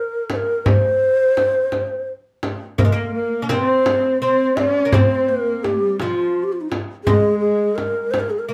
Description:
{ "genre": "Persian modal ensemble", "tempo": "56 BPM (dotted quarters)", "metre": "6/8", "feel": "straight", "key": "C dastgah shur", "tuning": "A4 = 440 Hz", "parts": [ { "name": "mellow hollow low ney", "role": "melody", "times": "0.0-8.5 s", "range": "Eb4 to Eb5+44c", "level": "-21 LUFS", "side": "equal", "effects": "none" }, { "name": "frame drum", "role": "percussion", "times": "0.3-8.3 s", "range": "none", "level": "-23 LUFS", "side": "equal", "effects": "none" }, { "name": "dark cello", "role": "second line", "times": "2.8-8.5 s", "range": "F3 to Db4+43c", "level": "-28 LUFS", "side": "equal", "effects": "none" }, { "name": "oud", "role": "second line", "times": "2.8-8.5 s", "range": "F3 to Db4+45c", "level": "-28 LUFS", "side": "equal", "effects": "none" } ], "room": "wet small room reverb, RT60 0.6 s", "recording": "band playing live in one room", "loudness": "-19 LUFS", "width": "mono", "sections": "0.0-2.8 A section; 2.8-8.5 B section", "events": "none", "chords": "none" }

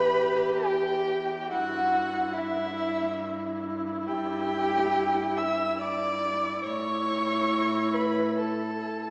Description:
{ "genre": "classical, slow romantic movement for string quartet", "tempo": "70 BPM", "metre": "3/4", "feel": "rubato", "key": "unclear", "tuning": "A4 = 440 Hz", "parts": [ { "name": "dark violin", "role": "melody", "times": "0.0-9.1 s", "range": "E5 to E6", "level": "-33 LUFS", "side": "equal", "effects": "none" }, { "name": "warm violin", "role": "second line", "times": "0.0-9.1 s", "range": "E4 to E5", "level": "-32 LUFS", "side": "equal", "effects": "none" }, { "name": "clear viola", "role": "accompaniment", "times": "0.0-9.1 s", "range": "E4 to G4", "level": "-34 LUFS", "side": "equal", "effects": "none" }, { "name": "rich cello", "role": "bass", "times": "0.0-9.1 s", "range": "E2 to A2", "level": "-38 LUFS", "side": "equal", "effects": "none" } ], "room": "wet concert hall reverb, RT60 2.1 s", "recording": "heard from further back in the room, small speaker sound", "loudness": "-28 LUFS", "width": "mono", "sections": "0.0-9.1 A section", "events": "none", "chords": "0.0 Em; 1.5 Em/G; 6.6 A" }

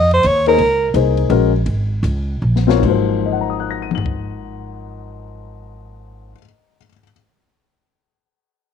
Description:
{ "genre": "modal jazz", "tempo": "146-172 BPM", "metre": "3/4", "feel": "swing 63% on 8ths", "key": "Ab mixolydian", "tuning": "A4 = 440 Hz", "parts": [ { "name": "breathy soprano saxophone", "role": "melody", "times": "0.0-0.9 s", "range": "Bb4 to Eb5", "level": "-14 LUFS", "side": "right 2 dB", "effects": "none" }, { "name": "upright bass", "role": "bass", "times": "0.0-6.3 s", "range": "Ab1 to F2", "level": "-20 LUFS", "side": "right 1 dB", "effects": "none" }, { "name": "compact cocktail drum kit", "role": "drums", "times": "0.1-4.2 s", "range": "crash cymbal, hi-hat, kick drum, ride cymbal, snare drum, toms", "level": "-26 LUFS", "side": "left 6 dB", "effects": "none" }, { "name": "warm upright piano", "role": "accompaniment", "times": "0.5-7.1 s", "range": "Ab2 to Gb7", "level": "-18 LUFS", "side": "left 12 dB", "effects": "none" } ], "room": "light reverb", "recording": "1960s-style stereo", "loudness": "-14 LUFS", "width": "side -7 dB against mid", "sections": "0.0-2.8 A section; 2.8-5.3 B section", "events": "soprano saxophone solo 0.0-2.8; slowing down 0.6-2.8; drum fill 2.4-2.8", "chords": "0.0 Gbsus2 (rootless); 2.8 Ab13" }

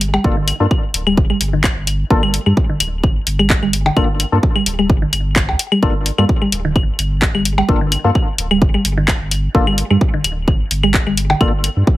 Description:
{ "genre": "minimal techno", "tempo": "129 BPM", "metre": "4/4", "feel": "swing 54% on 16ths", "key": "G minor", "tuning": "A4 = 445 Hz", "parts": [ { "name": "saturated sub bass", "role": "bass", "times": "0.0-11.8 s", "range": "D1 to G2", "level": "-19 LUFS", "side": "equal", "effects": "sidechain pumping" }, { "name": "house drum kit", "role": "drums", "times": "0.0-11.7 s", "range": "handclaps, hi-hat", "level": "-18 LUFS", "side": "left 1 dB", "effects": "none" }, { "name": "mallet-like synth pluck", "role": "riff", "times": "0.1-11.3 s", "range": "D3 to G3", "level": "-19 LUFS", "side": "right 1 dB", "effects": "chorus, sidechain pumping, dub echo" }, { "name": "percussion blips and claves", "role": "percussion", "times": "0.1-11.7 s", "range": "none", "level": "-22 LUFS", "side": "left 3 dB", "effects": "dub echo" }, { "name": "percussive organ stab", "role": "stabs", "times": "0.2-11.5 s", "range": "Bb3 to A4", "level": "-21 LUFS", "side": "left 3 dB", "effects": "analog chorus, dub echo" }, { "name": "electronic kick drum", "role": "drums", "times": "0.2-12.0 s", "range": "none", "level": "-15 LUFS", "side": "equal", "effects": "none" } ], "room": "light reverb", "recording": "heavily compressed radio sound", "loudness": "-13 LUFS", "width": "side -16 dB against mid", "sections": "0.0-12.0 A section", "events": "filter sweep on synth arpeggio sound 0.0-12.0", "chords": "0.0 Gm7" }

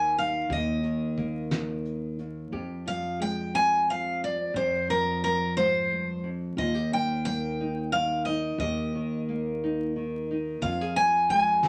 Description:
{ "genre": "acoustic folk duo or small band", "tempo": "59 BPM (dotted quarters)", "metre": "6/8", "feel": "straight", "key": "unclear", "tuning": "A4 = 442 Hz", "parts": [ { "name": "picked steel-string acoustic guitar", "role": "melody", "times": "0.0-11.7 s", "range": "Bb4 to Ab5", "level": "-28 LUFS", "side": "equal", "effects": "none" }, { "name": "nylon-string guitar", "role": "accompaniment", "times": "0.0-11.7 s", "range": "Eb2 to Ab4", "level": "-36 LUFS", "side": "equal", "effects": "none" }, { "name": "upright bass", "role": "bass", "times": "0.0-11.7 s", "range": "Eb2 to F2", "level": "-35 LUFS", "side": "equal", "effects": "none" }, { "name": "soft brush drum kit", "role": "drums", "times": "0.2-2.3, 10.6-11.7 s", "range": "hi-hat, kick drum, snare drum", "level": "-36 LUFS", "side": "equal", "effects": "none" } ], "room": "wet studio ambience, RT60 0.5 s", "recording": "vinyl crackle", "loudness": "-28 LUFS", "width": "mono", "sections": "0.0-2.5 A section; 2.5-11.7 A section", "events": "none", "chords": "0.0 Eb; 2.5 Fmadd9; 6.6 Eb; 10.6 Fm" }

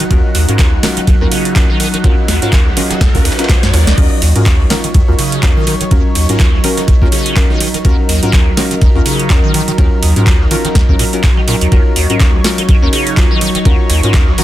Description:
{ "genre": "acid house", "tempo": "124 BPM", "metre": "4/4", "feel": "swing 57% on 16ths", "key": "Eb minor", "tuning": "A4 = 440 Hz", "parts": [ { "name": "lush unison pad", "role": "sustained chords", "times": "0.0-14.4 s", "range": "Gb3 to Gb5", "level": "-19 LUFS", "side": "right 1 dB", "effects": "chorus, sidechain pumping" }, { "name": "liquid acid bass", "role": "riff", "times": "0.0-14.4 s", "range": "Db2 to Eb3", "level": "-15 LUFS", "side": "equal", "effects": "phaser, overdrive, ensemble chorus" }, { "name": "booming analog drum machine", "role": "drums", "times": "0.0-14.4 s", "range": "crash cymbal, handclaps, hi-hat, snare drum", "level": "-18 LUFS", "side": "right 2 dB", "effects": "overdrive" }, { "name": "deep mellow chord stab", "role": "stabs", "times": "0.1-14.4 s", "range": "Db4 to Bb4", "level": "-20 LUFS", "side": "left 2 dB", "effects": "chorus, cassette tape, dub echo" }, { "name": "dusty soul sampler-style drum kit", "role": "drums", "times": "0.1-14.4 s", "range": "hi-hat, ride cymbal, snare drum", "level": "-27 LUFS", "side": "right 2 dB", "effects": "none" }, { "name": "electronic kick drum", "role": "drums", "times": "0.1-14.2 s", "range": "none", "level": "-12 LUFS", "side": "equal", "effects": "overdrive" }, { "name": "riser", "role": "sound effects", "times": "1.2-4.0 s", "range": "none", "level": "-24 LUFS", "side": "equal", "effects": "none" } ], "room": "little or no reverb", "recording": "dense, heavily limited modern master", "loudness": "-9 LUFS", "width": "side -14 dB against mid", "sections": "0.0-4.0 A section; 4.0-14.4 B section", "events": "filter sweep on acid bass 0.0-4.0; riser 1.2-4.0; drum fill 3.5-4.0; drop 4.0-14.4", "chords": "0.0 Ebm7" }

